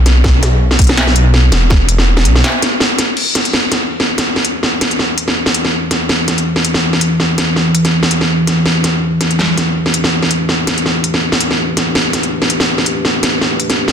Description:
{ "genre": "half-time drum and bass", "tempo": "164 BPM", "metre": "4/4", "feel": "swing 55% on 16ths, half-time", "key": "E minor", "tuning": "A4 = 440 Hz", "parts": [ { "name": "dark detuned saw bass", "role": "bass", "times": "0.0-2.4 s", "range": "E1 to B1", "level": "-10 LUFS", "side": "equal", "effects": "none" }, { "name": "industrial drum kit", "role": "drums", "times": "0.1-13.9 s", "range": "crash cymbal, hi-hat, snare drum", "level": "-13 LUFS", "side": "equal", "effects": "none" }, { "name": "electronic kick drum", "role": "drums", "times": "0.2-1.8 s", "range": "none", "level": "-10 LUFS", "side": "equal", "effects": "none" }, { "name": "dark analog pad", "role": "sustained chords", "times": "3.2-13.9 s", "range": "E3 to B4", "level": "-17 LUFS", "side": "equal", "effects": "wide subtle chorus, sidechain pumping" } ], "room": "moderate echo chamber reverb, RT60 1.9 s", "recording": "dense, heavily limited modern master", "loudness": "-11 LUFS", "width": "side -8 dB against mid", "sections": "0.0-3.2 A section; 3.2-13.9 B section", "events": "drop 0.0-3.2; break 2.4-3.2; filter sweep on analog synth pad 3.2-13.9", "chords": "0.0 E5; 3.2 Em" }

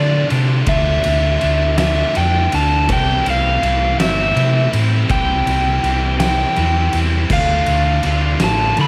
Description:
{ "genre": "post-rock", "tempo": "54 BPM (dotted quarters)", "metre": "6/8", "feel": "straight", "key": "unclear", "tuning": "A4 = 437 Hz", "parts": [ { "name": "overdriven slide guitar", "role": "melody", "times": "0.0-8.9 s", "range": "D5 to B5", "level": "-21 LUFS", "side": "equal", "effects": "analog delay" }, { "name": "distorted electric guitar", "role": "riff", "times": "0.0-8.9 s", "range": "C3 to F4", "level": "-24 LUFS", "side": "equal", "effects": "distortion" }, { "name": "overdriven fingered electric bass", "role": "bass", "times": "0.0-8.9 s", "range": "G1 to D3", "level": "-20 LUFS", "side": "equal", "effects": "none" }, { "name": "oversized low-tuned drum kit", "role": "drums", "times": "0.3-8.9 s", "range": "crash cymbal, kick drum, ride cymbal, snare drum", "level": "-24 LUFS", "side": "equal", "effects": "none" } ], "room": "light reverb, small room reverb", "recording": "none", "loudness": "-16 LUFS", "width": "mono", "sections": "0.0-8.9 A section", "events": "none", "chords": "0.0 Dmadd9; 2.9 Am/C; 5.1 C; 7.3 Dm" }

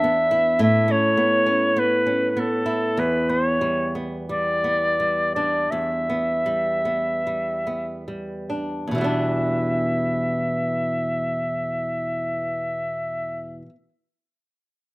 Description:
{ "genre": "celtic folk, Celtic slow air", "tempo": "35-54 BPM", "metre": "4/4", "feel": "rubato", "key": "E dorian", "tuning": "A4 = 441 Hz", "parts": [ { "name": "mellow soprano saxophone", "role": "melody", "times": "0.0-13.6 s", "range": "A4 to E5", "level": "-22 LUFS", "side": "equal", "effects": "slapback echo" }, { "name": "flamenco guitar", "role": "accompaniment", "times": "0.0-13.8 s", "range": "E2 to E4", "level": "-25 LUFS", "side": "equal", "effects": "none" } ], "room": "little or no reverb", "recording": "recorded outdoors, with no room sound", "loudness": "-20 LUFS", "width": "side -22 dB against mid", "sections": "0.0-8.9 A section; 8.9-14.9 B section", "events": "slowing down 0.0-8.9", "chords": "0.0 E5; 0.6 Aadd9; 3.0 Em7" }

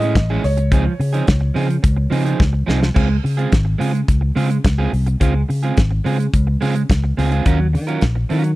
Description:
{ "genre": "disco", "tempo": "107 BPM", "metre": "4/4", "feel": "straight", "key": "Db major", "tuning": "A4 = 440 Hz", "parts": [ { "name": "clear baby grand piano", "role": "melody", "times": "0.0-2.6 s", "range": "Db5 to Eb5", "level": "-27 LUFS", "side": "right 2 dB", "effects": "none" }, { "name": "electric guitar at the edge of break-up", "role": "accompaniment", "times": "0.0-8.5 s", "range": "F3 to Bb4", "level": "-22 LUFS", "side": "right 5 dB", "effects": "none" }, { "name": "fingered electric bass", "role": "bass", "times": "0.0-8.5 s", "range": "Ab1 to Eb3", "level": "-17 LUFS", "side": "left 1 dB", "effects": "none" }, { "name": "damped 70s drum kit", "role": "drums", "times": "0.0-8.6 s", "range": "crash cymbal, hi-hat, kick drum, snare drum", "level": "-17 LUFS", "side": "equal", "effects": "none" } ], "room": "studio reverb", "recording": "dry, close 1970s-style studio recording", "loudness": "-15 LUFS", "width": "side -18 dB against mid", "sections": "0.0-3.0 A section; 3.0-8.6 B section", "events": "drum fill 2.4-3.0", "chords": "0.4 Dbmaj9; 3.0 Dbmaj7; 7.5 Ebm9" }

